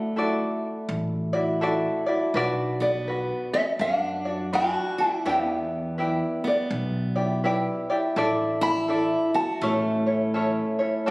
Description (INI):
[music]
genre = Hawaiian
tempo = 83 BPM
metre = 4/4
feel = swing 62% on 8ths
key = unclear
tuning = A4 = 440 Hz
[part]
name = ukulele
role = melody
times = 0.0-11.1 s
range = C#5 to B5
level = -26 LUFS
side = equal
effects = none
[part]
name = picked steel-string acoustic guitar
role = second line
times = 0.0-11.1 s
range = A3 to F#4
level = -29 LUFS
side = equal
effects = none
[part]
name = tenor ukulele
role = accompaniment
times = 0.0-11.1 s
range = C#4 to D5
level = -26 LUFS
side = equal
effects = none
[part]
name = upright bass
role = bass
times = 0.0-11.1 s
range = A1 to F#2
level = -32 LUFS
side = equal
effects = none
[sound]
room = wet recital hall reverb, RT60 1.6 s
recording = recorded on a phone in the room, club reverb, compression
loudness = -22 LUFS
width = side -24 dB against mid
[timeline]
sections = 0.0-11.1 A section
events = none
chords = 0.0 Dadd9; 2.3 Bm; 5.3 Em7; 8.2 Asus4; 9.6 A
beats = 0.17 0.90 1.62 | 2.35 3.08 3.80 4.53 | 5.26 5.98 6.71 7.44 | 8.16 8.89 9.62 10.34 | 11.07